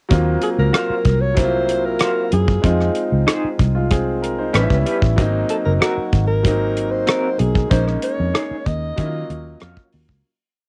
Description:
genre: lush 1970s-style soul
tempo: 95 BPM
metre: 4/4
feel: straight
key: Eb dorian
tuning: A4 = 441 Hz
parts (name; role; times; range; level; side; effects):
- bright grand piano; accompaniment; 0.1-10.3 s; Gb3 to C5; -25 LUFS; equal; cassette tape
- vintage muted fingered electric bass; bass; 0.1-10.2 s; Gb1 to Eb3; -22 LUFS; equal; tube saturation
- damped 70s drum kit; drums; 0.1-10.2 s; hi-hat, kick drum, rim click; -21 LUFS; equal; none
- mellow alto saxophone; melody; 0.4-9.9 s; Gb4 to Eb5; -25 LUFS; equal; cassette tape
- electric guitar through a small old amp; riff; 0.7-9.8 s; C4 to F5; -26 LUFS; equal; tremolo, cassette tape
room: light reverb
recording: home recording on cassette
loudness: -18 LUFS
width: mono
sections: 0.1-10.2 A section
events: fade-out 7.7-10.2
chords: 0.1 Ebm69 (rootless); 2.6 Fm7; 4.5 A9; 5.2 Ab9; 7.7 Bbm7; 9.0 Ebm9

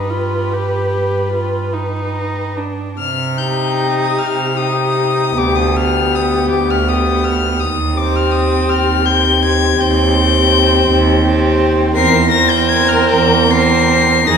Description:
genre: classical, slow romantic movement for string quartet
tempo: 46-57 BPM (dotted quarters)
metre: 12/8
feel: rubato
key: C minor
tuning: A4 = 440 Hz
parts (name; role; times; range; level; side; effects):
- rich violin; melody; 0.0-14.4 s; G4 to C7; -17 LUFS; left 7 dB; none
- dark violin; second line; 0.0-14.4 s; G4 to B4; -18 LUFS; left 4 dB; none
- warm viola; accompaniment; 0.0-14.4 s; B3 to G4; -19 LUFS; right 3 dB; none
- rich cello; bass; 0.0-14.4 s; D2 to C3; -17 LUFS; right 3 dB; none
room: wet recital hall reverb, RT60 1.6 s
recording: recorded in a church or concert hall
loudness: -12 LUFS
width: side -6 dB against mid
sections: 0.0-3.0 A section; 3.0-14.4 B section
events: none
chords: 0.0 G; 3.0 Cm; 5.4 G/D; 7.6 Cm/Eb; 12.0 C7/E

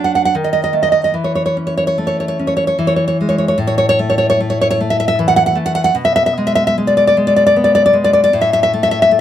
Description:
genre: romantic piece for solo classical guitar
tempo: 76 BPM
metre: 3/4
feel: rubato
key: A major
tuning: A4 = 440 Hz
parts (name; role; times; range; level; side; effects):
- nylon-string guitar; solo; 0.0-9.2 s; A2 to F#5; -12 LUFS; equal; none
room: light reverb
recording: none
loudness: -12 LUFS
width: side -10 dB against mid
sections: 0.0-3.6 A section; 3.6-9.2 B section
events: none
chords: 0.3 N.C.; 1.1 A/E; 2.8 E; 3.6 A5; 6.0 Bm6; 8.3 A5

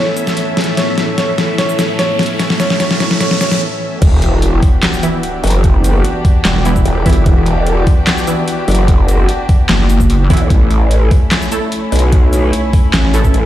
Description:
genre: heavy wobble dubstep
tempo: 148 BPM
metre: 4/4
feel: half-time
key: E dorian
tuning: A4 = 439 Hz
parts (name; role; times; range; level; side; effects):
- clear grand piano; melody; 0.0-3.6 s; C#4 to C#5; -20 LUFS; right 1 dB; dub echo
- dark studio string section; sustained chords; 0.0-13.5 s; A2 to E5; -20 LUFS; left 1 dB; sidechain pumping
- riser and sub drop; sound effects; 1.3-5.6 s; none; -21 LUFS; equal; none
- ethereal airy pad; texture; 0.0-13.5 s; B3 to D5; -25 LUFS; equal; ensemble chorus, built-in reverb, sidechain pumping
- dubstep drum kit; drums; 0.2-13.4 s; crash cymbal, handclaps, hi-hat, shaker, snare drum; -17 LUFS; left 1 dB; overdrive
- growl bass; bass; 4.0-13.5 s; E1 to B1; -12 LUFS; equal; chorus, overdrive
- electronic kick drum; drums; 4.0-13.3 s; none; -10 LUFS; equal; overdrive
- orchestra-hit-like synth stab; stabs; 5.0-13.3 s; E3 to A4; -21 LUFS; right 2 dB; built-in reverb, dub echo
- pulsing pluck wobble bass; bass; 6.4-6.8, 9.7-10.3, 12.9-13.3 s; E1 to A1; -12 LUFS; equal; chorus, overdrive
room: little or no reverb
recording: played on a big sound system in a bare room, large studio reverb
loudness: -10 LUFS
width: side -13 dB against mid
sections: 0.0-4.0 A section; 4.0-13.5 B section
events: build-up 0.0-4.0; drum fill 0.0-3.6; filter sweep on grand piano 0.0-4.0; riser 1.3-3.6; break 3.6-4.0; drop 4.0-13.5; impact 4.0-5.6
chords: 0.0 A; 4.0 Em7; 10.5 A

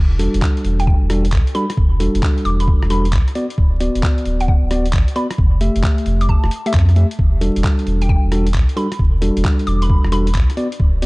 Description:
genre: UK garage, two-step garage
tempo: 133 BPM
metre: 4/4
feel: swing 66% on 16ths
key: E minor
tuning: A4 = 442 Hz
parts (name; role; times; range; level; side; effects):
- saturated sub bass; bass; 0.0-11.1 s; D1 to F2; -16 LUFS; equal; none
- tine electric piano; stabs; 0.2-11.1 s; G3 to E5; -22 LUFS; equal; none
- boom bap sampler-style drum kit; drums; 0.2-11.1 s; handclaps, hi-hat, rim click; -28 LUFS; equal; none
- electronic kick drum; drums; 0.4-10.9 s; none; -16 LUFS; equal; none
- hollow square pluck; melody; 0.8-10.6 s; E5 to D6; -27 LUFS; equal; chorus, dub echo
room: little or no reverb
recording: dark, warm production, vinyl crackle, nothing above 10.6 kHz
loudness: -14 LUFS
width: side -25 dB against mid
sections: 0.0-11.1 A section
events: none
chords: 0.0 Em11; 3.4 D6; 5.4 Fmaj9; 7.2 Em11

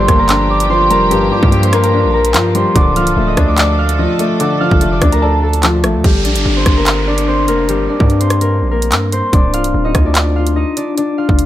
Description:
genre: hip hop, drill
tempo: 146 BPM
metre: 4/4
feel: half-time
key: G minor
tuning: A4 = 440 Hz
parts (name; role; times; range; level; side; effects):
- concert harp; melody; 0.0-11.5 s; G3 to F6; -16 LUFS; equal; none
- felt-muted upright piano; accompaniment; 0.0-6.1 s; G2 to D5; -16 LUFS; left 3 dB; none
- warm studio string section; sustained chords; 0.0-6.0 s; F3 to A4; -22 LUFS; right 1 dB; none
- distorted 808-style bass; bass; 0.0-11.5 s; C1 to G2; -16 LUFS; equal; distortion
- drill drum kit; drums; 0.1-11.5 s; handclaps, hi-hat, kick drum, rim click; -14 LUFS; equal; none
- downlifter; sound effects; 6.0-9.3 s; none; -24 LUFS; right 2 dB; none
room: small room ambience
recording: none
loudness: -10 LUFS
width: side -13 dB against mid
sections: 0.0-6.0 A section; 6.0-11.5 B section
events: none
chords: 0.0 Gm7; 2.8 Dm; 6.0 Gm; 9.3 Dm

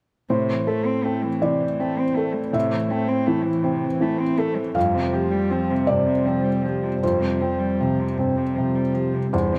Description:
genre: neoclassical piano and strings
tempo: 53 BPM (dotted quarters)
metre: 6/8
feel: rubato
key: A minor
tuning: A4 = 441 Hz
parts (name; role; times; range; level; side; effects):
- clear cello; second line; 0.3-9.6 s; G2 to C4; -29 LUFS; equal; none
- felt-muted upright piano; accompaniment; 0.3-9.6 s; E2 to F5; -24 LUFS; equal; none
- warbly tape-like pad; sustained chords; 0.3-9.6 s; G3 to C5; -33 LUFS; equal; chorus, built-in reverb
room: moderate large studio reverb, RT60 1.2 s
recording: none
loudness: -22 LUFS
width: mono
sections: 0.3-9.6 A section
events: none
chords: 0.3 Am; 4.8 Fsus2

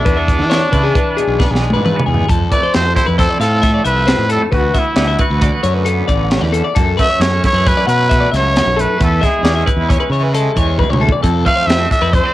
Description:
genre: math rock and midwest emo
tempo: 134 BPM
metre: 5/4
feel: straight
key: unclear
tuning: A4 = 435 Hz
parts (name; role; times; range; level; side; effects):
- growling trumpet; melody; 0.0-12.3 s; D4 to F5; -17 LUFS; equal; cassette tape
- twangy electric guitar; accompaniment; 0.0-12.3 s; D2 to F#4; -22 LUFS; right 7 dB; tremolo, cassette tape
- twelve-string electric guitar; arpeggios; 0.0-12.3 s; G#4 to F#5; -19 LUFS; left 7 dB; cassette tape
- fuzz fingered electric bass; bass; 0.1-12.2 s; A1 to E3; -17 LUFS; equal; overdrive
- crisp fusion drum kit; drums; 0.1-12.2 s; hi-hat, kick drum, snare drum, toms; -16 LUFS; equal; cassette tape
room: studio reverb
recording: home recording on cassette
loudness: -11 LUFS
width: side -15 dB against mid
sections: 0.0-2.3 A section; 2.3-12.3 B section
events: drum fill 1.4-2.3, 10.8-11.2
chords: 0.1 E7; 2.3 Fmaj7; 4.5 D69; 6.8 F#m7; 9.0 Amaj9/E; 11.2 Fmaj7

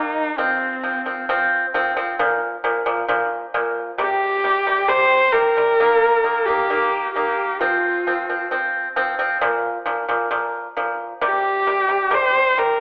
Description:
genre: mongolian traditional, Mongolian folk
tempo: 66 BPM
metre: 4/4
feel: straight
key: C yu mode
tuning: A4 = 440 Hz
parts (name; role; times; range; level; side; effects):
- clear horsehead fiddle; melody; 0.0-12.8 s; C4 to C5; -18 LUFS; equal; none
- pipa; arpeggios; 0.0-12.8 s; Bb2 to C4; -20 LUFS; equal; none
room: wet recital hall reverb, RT60 1.2 s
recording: telephone sound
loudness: -17 LUFS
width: side -30 dB against mid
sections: 0.0-12.8 A section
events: none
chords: 0.4 F5; 2.2 Bb5; 4.0 C5; 5.8 Eb5; 7.6 F5; 9.4 Bb5; 11.2 C5

